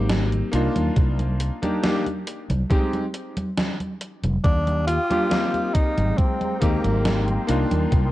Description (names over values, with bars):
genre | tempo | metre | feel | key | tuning
vaporwave | 69 BPM | 4/4 | straight | unclear | A4 = 439 Hz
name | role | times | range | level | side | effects
clear electric grand piano | accompaniment | 0.0-8.1 s | Ab3 to G4 | -26 LUFS | left 1 dB | lush chorus, tape echo
fretless electric bass | bass | 0.0-8.1 s | F1 to Eb2 | -23 LUFS | equal | tube saturation, lush chorus
gated 80s digital drum machine | drums | 0.1-8.1 s | congas, hi-hat, snare drum | -27 LUFS | equal | gated reverb, gated reverb snare, vintage 12-bit sampler grit
electronic kick drum | drums | 1.0-8.1 s | none | -20 LUFS | equal | vintage 12-bit sampler grit
breathy tenor saxophone | melody | 4.4-7.5 s | Bb3 to F4 | -26 LUFS | equal | tape echo
soft string machine | sustained chords | 4.4-8.1 s | Ab3 to Eb6 | -31 LUFS | equal | ensemble chorus, vintage 12-bit sampler grit
room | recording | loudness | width
little or no reverb | dark, warm production | -20 LUFS | side -16 dB against mid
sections
0.0-8.1 A section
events
none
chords
0.0 Abmaj9; 0.5 Cm7; 2.7 Fm7; 4.4 Ebmaj9; 5.7 Abmaj9; 7.5 Cm7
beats
0.10 | 0.97 1.83 2.71 3.58 | 4.44 5.31 6.18 7.05 | 7.92